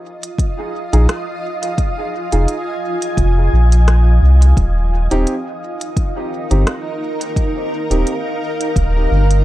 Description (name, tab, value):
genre	ambient dub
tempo	86 BPM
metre	4/4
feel	swing 55% on 16ths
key	F minor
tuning	A4 = 440 Hz
part	granular cloud pad	sustained chords	0.0-9.4 s	Eb4 to Ab5	-22 LUFS	right 1 dB	built-in reverb
part	organic electronic drum kit	drums	0.2-9.4 s	hi-hat, rim click	-25 LUFS	equal	studio reverb, dub echo
part	electronic kick drum	drums	0.4-8.9 s	none	-17 LUFS	equal	studio reverb
part	dark upright piano	stabs	0.9-8.1 s	C4 to Ab4	-24 LUFS	right 1 dB	dub echo
part	warm sub bass	bass	0.9-9.4 s	Eb1 to C2	-11 LUFS	equal	none
room	little or no reverb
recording	echo-heavy mix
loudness	-14 LUFS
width	side -15 dB against mid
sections	0.0-9.4 A section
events	none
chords	0.0 Fm7; 4.6 Eb